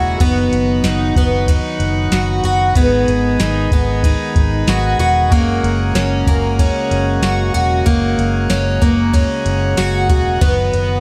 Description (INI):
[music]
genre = dream pop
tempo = 94 BPM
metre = 4/4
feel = straight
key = B major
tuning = A4 = 440 Hz
[part]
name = pipe organ, plenum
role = sustained chords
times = 0.0-11.0 s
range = C#3 to G#4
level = -23 LUFS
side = equal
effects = none
[part]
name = picked plugged-in twelve-string acoustic guitar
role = arpeggios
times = 0.0-11.0 s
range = A#3 to F#4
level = -20 LUFS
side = equal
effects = subtle chorus, tape echo
[part]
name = vintage muted fingered electric bass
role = bass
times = 0.0-11.0 s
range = E1 to G#1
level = -21 LUFS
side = equal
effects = none
[part]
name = soft vintage rhythm box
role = drums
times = 0.2-10.9 s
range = kick drum, ride cymbal, snare drum, tambourine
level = -20 LUFS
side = equal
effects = overdrive
[sound]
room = light reverb, digital ambience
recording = none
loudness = -15 LUFS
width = mono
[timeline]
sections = 0.0-11.0 A section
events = none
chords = 0.2 B/F#; 2.8 G#m; 5.3 F#add9; 10.4 B/F#